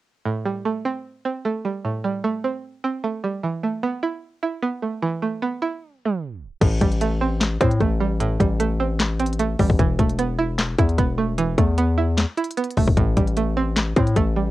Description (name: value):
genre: hip hop, trap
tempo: 151 BPM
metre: 4/4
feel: half-time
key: A minor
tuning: A4 = 441 Hz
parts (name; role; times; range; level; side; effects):
- string-like resonator pluck; accompaniment; 0.3-14.5 s; A2 to E4; -23 LUFS; right 4 dB; chorus, cassette tape
- distorted 808-style bass; bass; 6.6-14.5 s; E1 to A2; -22 LUFS; left 2 dB; distortion
- trap drum kit; drums; 6.6-14.3 s; crash cymbal, handclaps, hi-hat, kick drum, snare drum; -21 LUFS; left 2 dB; cassette tape
room: little or no reverb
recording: home recording on cassette, tape stop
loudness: -20 LUFS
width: side -16 dB against mid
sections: 0.3-6.6 A section; 6.6-14.5 B section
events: tape stop 5.8-6.6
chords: 0.3 Am7; 3.4 Esus4; 6.6 Am7; 9.8 Esus4; 13.0 Am7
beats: | 0.26 0.65 1.05 1.45 | 1.84 2.24 2.64 3.04 | 3.43 3.83 4.23 4.63 | 5.02 5.42 5.82 6.22 | 6.61 7.01 7.41 7.80 | 8.20 8.60 9.00 9.39 | 9.79 10.19 10.59 10.98 | 11.38 11.78 12.18 12.57 | 12.97 13.37 13.77 14.16